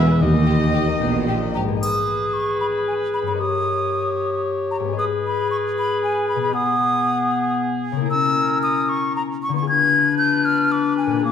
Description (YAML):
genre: cinematic, playful, whimsical film cue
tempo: 76 BPM (dotted quarters)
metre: 6/8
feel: straight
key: G# minor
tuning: A4 = 436 Hz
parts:
  - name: warm cor anglais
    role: second line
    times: 0.0-11.3 s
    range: G#4 to E5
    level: -29 LUFS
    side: left 1 dB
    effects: none
  - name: rich studio viola section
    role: accompaniment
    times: 0.0-1.4 s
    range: G4 to B4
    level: -30 LUFS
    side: equal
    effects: none
  - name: concert harp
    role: arpeggios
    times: 0.0-11.3 s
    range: G2 to D#6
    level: -26 LUFS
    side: left 10 dB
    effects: none
  - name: mellow tuba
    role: bass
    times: 0.0-1.7 s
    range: A#1 to D#2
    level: -23 LUFS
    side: right 4 dB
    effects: none
  - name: rich studio cello section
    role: bass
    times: 0.0-1.8 s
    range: D#2 to B2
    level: -24 LUFS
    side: right 4 dB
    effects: none
  - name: rich studio double bass section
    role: bass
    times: 0.0-1.7 s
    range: A#1 to D#2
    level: -26 LUFS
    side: right 3 dB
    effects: none
  - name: rich studio violin section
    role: second line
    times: 0.2-1.5 s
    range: D#5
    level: -34 LUFS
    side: left 2 dB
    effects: none
  - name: rich studio violin section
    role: melody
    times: 0.5-1.6 s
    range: G4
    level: -33 LUFS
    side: left 4 dB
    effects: none
  - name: hollow concert flute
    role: second line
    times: 1.5-11.3 s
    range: G#5 to Ab6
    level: -21 LUFS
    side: left 1 dB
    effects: none
  - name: warm clarinet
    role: second line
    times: 1.8-11.3 s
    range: A#3 to G#4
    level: -22 LUFS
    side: left 3 dB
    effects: none
  - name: triangle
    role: percussion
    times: 1.8-2.8 s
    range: none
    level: -40 LUFS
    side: left 2 dB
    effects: none
room: wet scoring stage reverb, RT60 1.5 s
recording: none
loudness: -18 LUFS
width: side -8 dB against mid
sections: 0.0-1.8 A section; 1.8-11.3 B section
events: none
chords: 0.2 D#; 1.8 G#m; 6.5 G#m/B; 8.1 A#dim/C#; 9.7 Ddim7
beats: | 0.21 1.01 | 1.82 2.61 | 3.40 4.19 | 4.97 5.75 | 6.53 7.32 | 8.10 8.88 | 9.67 10.45 | 11.24